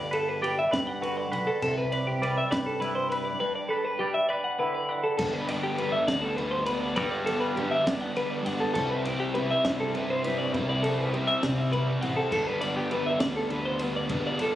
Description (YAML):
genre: math rock and midwest emo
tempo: 67 BPM (dotted quarters)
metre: 6/8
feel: straight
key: G major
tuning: A4 = 440 Hz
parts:
  - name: twangy electric guitar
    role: accompaniment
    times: 0.0-7.0 s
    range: G2 to D5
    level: -31 LUFS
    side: right 2 dB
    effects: harmonic tremolo
  - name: twelve-string electric guitar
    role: arpeggios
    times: 0.0-14.6 s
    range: G4 to F#5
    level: -28 LUFS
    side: left 1 dB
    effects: none
  - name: modern bright fingered electric bass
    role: bass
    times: 0.0-14.6 s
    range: G1 to G3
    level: -33 LUFS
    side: equal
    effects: none
  - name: compact cocktail drum kit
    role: drums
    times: 0.1-14.5 s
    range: crash cymbal, kick drum, ride cymbal, snare drum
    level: -36 LUFS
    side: equal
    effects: none
  - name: crunchy overdriven guitar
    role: riff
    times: 5.2-14.6 s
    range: G2 to E4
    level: -30 LUFS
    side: equal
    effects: none
room: light reverb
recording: recorded on a phone in the room, club reverb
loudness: -25 LUFS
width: side -13 dB against mid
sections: 0.0-5.2 A section; 5.2-14.6 B section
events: none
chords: 0.0 Gmaj7; 1.6 Cmaj9; 3.4 G69; 5.2 G; 8.8 Cmaj9; 12.3 G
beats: 0.72 | 1.62 2.51 | 3.41 4.30 | 5.20 6.09 | 6.98 7.87 | 8.76 9.65 | 10.54 11.43 | 12.32 13.21 | 14.10